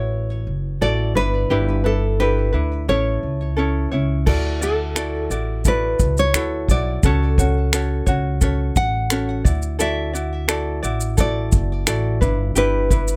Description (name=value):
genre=acoustic pop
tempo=87 BPM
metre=4/4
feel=straight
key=D major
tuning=A4 = 440 Hz
part: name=nylon-string guitar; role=melody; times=0.0-13.2 s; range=A4 to F#5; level=-26 LUFS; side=equal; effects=digital delay
part: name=ukulele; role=accompaniment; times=0.0-13.2 s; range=C#4 to D5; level=-27 LUFS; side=equal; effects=none
part: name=upright bass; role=bass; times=0.0-13.2 s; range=F#1 to D2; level=-24 LUFS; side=equal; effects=none
part: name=natural country drum kit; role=drums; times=4.3-13.2 s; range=crash cymbal, finger snaps, kick drum, shaker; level=-22 LUFS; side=equal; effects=none
room=little or no reverb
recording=none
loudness=-20 LUFS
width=mono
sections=0.0-4.3 A section; 4.3-13.2 B section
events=none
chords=0.0 Dadd9; 1.2 G6; 2.9 A; 4.3 Dadd9; 7.0 F#m/C#; 9.5 Dadd9; 12.2 G6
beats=0.13 0.82 | 1.51 2.20 2.89 3.58 | 4.27 4.96 5.65 6.34 | 7.03 7.72 8.41 9.11 | 9.80 10.49 11.18 11.87 | 12.56